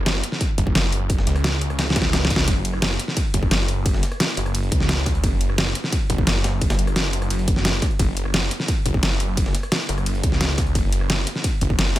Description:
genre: dark technical drum and bass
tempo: 174 BPM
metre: 4/4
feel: straight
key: unclear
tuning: A4 = 443 Hz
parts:
  - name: snarling distorted saw bass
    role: bass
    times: 0.0-12.0 s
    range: F#1 to C#2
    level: -22 LUFS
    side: equal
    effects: distortion, tube saturation, sidechain pumping
  - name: breakbeat sampler-style drum kit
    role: drums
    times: 0.1-12.0 s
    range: hi-hat, snare drum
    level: -32 LUFS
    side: equal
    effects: none
  - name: dubstep drum kit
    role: drums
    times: 0.1-12.0 s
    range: hi-hat, ride cymbal, rim click, snare drum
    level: -23 LUFS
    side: equal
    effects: none
  - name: electronic kick drum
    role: drums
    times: 0.4-11.8 s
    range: none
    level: -22 LUFS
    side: equal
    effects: none
room: little or no reverb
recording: none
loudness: -18 LUFS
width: side -14 dB against mid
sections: 0.0-12.0 A section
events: drum fill 1.8-2.5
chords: none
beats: 0.06 0.41 0.75 | 1.10 1.44 1.79 2.13 | 2.48 2.82 3.17 3.51 | 3.86 4.20 4.55 4.89 | 5.24 5.58 5.92 6.27 | 6.62 6.96 7.30 7.65 | 7.99 8.34 8.68 9.03 | 9.37 9.72 10.06 10.41 | 10.75 11.10 11.44 11.79

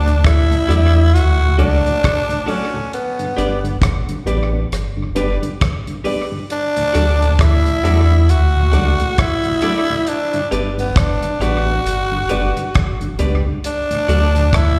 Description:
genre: roots reggae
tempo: 67 BPM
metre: 4/4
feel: swing 60% on 16ths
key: D major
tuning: A4 = 441 Hz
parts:
  - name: raspy tenor saxophone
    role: melody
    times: 0.0-14.8 s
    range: B3 to F#4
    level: -21 LUFS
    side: equal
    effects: dub echo
  - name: dark upright piano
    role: stabs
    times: 0.0-14.3 s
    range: D4 to D5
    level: -28 LUFS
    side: equal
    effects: slapback echo
  - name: warm sub bass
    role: bass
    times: 0.0-14.8 s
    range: F#1 to E2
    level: -17 LUFS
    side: equal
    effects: none
  - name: mellow tonewheel organ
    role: accompaniment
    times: 0.1-14.4 s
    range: D2 to D4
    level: -27 LUFS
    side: equal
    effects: overdrive, chorus vibrato, slow rotary speaker, slapback echo
  - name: damped 70s drum kit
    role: drums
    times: 0.1-14.8 s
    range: hi-hat, kick drum, rim click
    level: -21 LUFS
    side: equal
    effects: tape echo
  - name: electric guitar at the edge of break-up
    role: accompaniment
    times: 0.7-14.3 s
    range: F#4 to D5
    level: -32 LUFS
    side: equal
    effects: dub echo, slapback echo
room: light reverb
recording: live gig heard through the venue's PA, recital hall reverb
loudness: -17 LUFS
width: mono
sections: 0.0-14.8 A section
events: none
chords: 0.0 D; 2.9 G; 6.5 D; 10.1 G; 13.6 D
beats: 0.24 1.14 2.03 | 2.92 3.82 4.71 5.60 | 6.50 7.39 8.28 9.18 | 10.07 10.96 11.85 12.75 | 13.64 14.53

